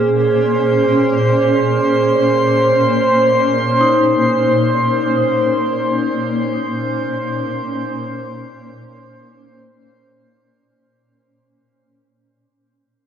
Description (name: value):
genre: ambient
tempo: free time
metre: none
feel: none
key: Bb minor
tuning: A4 = 442 Hz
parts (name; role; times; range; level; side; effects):
- granular cloud pad; sustained chords; 0.0-10.8 s; Bb2 to C5; -18 LUFS; left 1 dB; built-in reverb
- vibraphone with medium hard mallets; arpeggios; 0.0-10.8 s; Eb4 to Ab4; -20 LUFS; right 1 dB; diffuse ambient delay
- drifting glass-harmonics texture; texture; 0.3-10.8 s; C5 to C6; -17 LUFS; right 1 dB; chorus, built-in reverb
room: wet cathedral reverb, RT60 6.8 s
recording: worn, warbling old tape, cassette tape, warbly pitch drift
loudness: -13 LUFS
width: side -8 dB against mid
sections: 0.0-10.7 A section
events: fade-in on ambient pad 0.0-10.7; fade-out 3.5-10.7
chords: 0.0 Bbmadd9